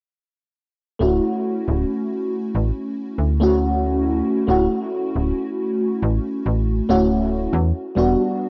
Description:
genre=vaporwave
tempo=69 BPM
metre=4/4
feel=swing 54% on 16ths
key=D major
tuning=A4 = 440 Hz
part: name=FM electric piano with soft pad layer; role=accompaniment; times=1.0-8.5 s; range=G3 to F#4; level=-22 LUFS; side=equal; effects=phaser, analog chorus, cassette tape, analog delay
part: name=slap-like FM bass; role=bass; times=1.0-8.2 s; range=D1 to E2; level=-23 LUFS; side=equal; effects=none
room=moderate plate reverb, RT60 2.4 s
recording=worn, warbling old tape, cassette tape, warbly pitch drift, nothing above 8.0 kHz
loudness=-21 LUFS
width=mono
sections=1.0-8.5 A section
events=none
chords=1.0 Dmaj9; 7.5 Em9

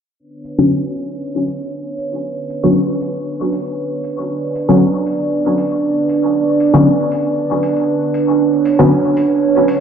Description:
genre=dub techno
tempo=117 BPM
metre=4/4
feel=straight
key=B minor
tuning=A4 = 441 Hz
part: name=dark analog pad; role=sustained chords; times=0.2-9.8 s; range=D4 to D5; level=-16 LUFS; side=right 3 dB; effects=lush chorus
part: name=electronic hi-hat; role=drums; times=0.5-9.8 s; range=none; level=-42 LUFS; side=left 2 dB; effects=overdrive
part: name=filtered dub chord stab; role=stabs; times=0.6-8.9 s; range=D3 to C#4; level=-16 LUFS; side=left 1 dB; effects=chorus, phaser, dub echo
room=moderate lush hall reverb, RT60 2.6 s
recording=played on a big sound system in a bare room, stone room reverb, low-pass filter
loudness=-13 LUFS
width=side -7 dB against mid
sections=0.2-9.8 A section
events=filter sweep on synth stab 0.2-9.8; filter sweep 0.2-9.8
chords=0.2 Bmadd9

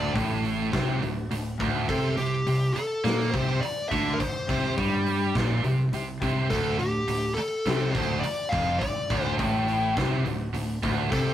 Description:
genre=hard rock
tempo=104 BPM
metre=4/4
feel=straight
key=D minor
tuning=A4 = 440 Hz
part: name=smooth overdriven lead guitar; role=melody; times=0.0-11.3 s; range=G4 to F5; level=-29 LUFS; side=left 1 dB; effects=none
part: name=overdriven semi-hollow guitar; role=riff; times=0.0-11.3 s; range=D2 to Bb3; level=-30 LUFS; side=left 3 dB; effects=none
part: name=scooped high-gain guitar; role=riff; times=0.0-11.3 s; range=D2 to Bb3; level=-30 LUFS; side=right 5 dB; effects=distortion
part: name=picked electric bass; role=bass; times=0.0-11.3 s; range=D1 to Bb2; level=-30 LUFS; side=equal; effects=none
part: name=big rock drum kit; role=drums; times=0.2-11.3 s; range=hi-hat, kick drum, snare drum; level=-32 LUFS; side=equal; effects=none
room=moderate studio reverb, RT60 0.5 s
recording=rough rehearsal-room recording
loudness=-24 LUFS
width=side -11 dB against mid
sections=0.0-11.3 A section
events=none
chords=0.0 D5; 1.9 C5; 6.5 Dm

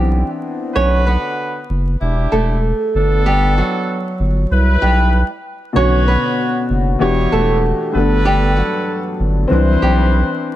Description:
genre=hip hop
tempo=96 BPM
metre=4/4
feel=swing 57% on 16ths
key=B minor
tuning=A4 = 439 Hz
part: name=flamenco guitar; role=melody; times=0.0-10.3 s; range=F#3 to C#5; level=-20 LUFS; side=right 2 dB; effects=high-pass filter, low-pass filter
part: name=dark upright piano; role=accompaniment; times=0.0-0.8, 5.7-10.6 s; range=G2 to B4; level=-19 LUFS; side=left 3 dB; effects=high-pass filter, low-pass filter
part: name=saturated sub bass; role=bass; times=0.0-10.2 s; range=E1 to C2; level=-15 LUFS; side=equal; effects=none
part: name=warm horn section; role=stabs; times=0.7-10.4 s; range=D3 to C#5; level=-22 LUFS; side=right 1 dB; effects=high-pass filter, low-pass filter, ping-pong delay
room=studio reverb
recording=vinyl crackle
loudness=-14 LUFS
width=side -13 dB against mid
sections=0.8-10.6 A section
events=none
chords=0.0 Cmaj7; 0.8 Bmadd9; 2.0 Em7; 2.9 Gadd9; 4.5 Cmaj7; 5.8 Bmadd9; 7.0 Em7; 7.9 Gadd9; 9.5 Cmaj7

